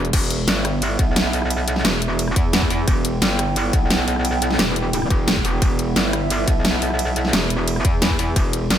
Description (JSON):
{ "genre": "dark technical drum and bass", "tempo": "175 BPM", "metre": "4/4", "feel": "straight", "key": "E minor", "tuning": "A4 = 440 Hz", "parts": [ { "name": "dark analog pad", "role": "sustained chords", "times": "0.0-8.8 s", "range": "B3 to G5", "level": "-25 LUFS", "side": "right 3 dB", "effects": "lush chorus, sidechain pumping" }, { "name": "metallic wobble bass", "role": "bass", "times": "0.0-8.8 s", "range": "E1 to E2", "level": "-22 LUFS", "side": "equal", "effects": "chorus, tube saturation" }, { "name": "dubstep drum kit", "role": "drums", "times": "0.0-8.8 s", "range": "crash cymbal, hi-hat, ride cymbal, rim click, snare drum", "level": "-22 LUFS", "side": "equal", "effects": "none" }, { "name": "electronic kick drum", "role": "drums", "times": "0.1-8.4 s", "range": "none", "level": "-20 LUFS", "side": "equal", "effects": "none" } ], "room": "little or no reverb", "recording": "none", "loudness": "-17 LUFS", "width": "side -10 dB against mid", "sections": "0.1-8.8 A section", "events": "drop 0.1-8.8", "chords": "0.1 E5" }